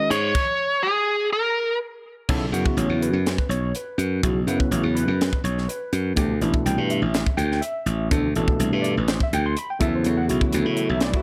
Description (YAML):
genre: electric jazz fusion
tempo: 124 BPM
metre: 4/4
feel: straight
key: B minor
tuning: A4 = 440 Hz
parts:
  - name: biting lead guitar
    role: melody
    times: 0.0-1.8 s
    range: G#4 to D#5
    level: -23 LUFS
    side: equal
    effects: overdrive
  - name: overdriven tine electric piano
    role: accompaniment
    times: 0.0-11.2 s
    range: B2 to C6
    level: -28 LUFS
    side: equal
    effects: analog chorus
  - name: glassy slap bass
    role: bass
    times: 0.1-11.1 s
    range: A1 to A2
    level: -25 LUFS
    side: equal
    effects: none
  - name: crisp fusion drum kit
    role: drums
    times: 0.1-11.2 s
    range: crash cymbal, hi-hat, kick drum, snare drum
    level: -27 LUFS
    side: equal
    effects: none
  - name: muted studio string section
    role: sustained chords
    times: 10.0-11.2 s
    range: E3 to E4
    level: -34 LUFS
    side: equal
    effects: none
room: small room reverb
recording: none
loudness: -23 LUFS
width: mono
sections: 0.0-2.3 A section; 2.3-11.2 B section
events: stop 0.3-2.3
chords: 0.3 N.C.; 2.3 Bsus4; 6.2 D9sus4; 9.8 E9sus4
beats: | 0.34 0.83 1.32 1.80 | 2.29 2.78 3.26 3.75 | 4.23 4.72 5.20 5.69 | 6.17 6.66 7.14 7.63 | 8.11 8.60 9.08 9.56 | 10.05 10.53 11.02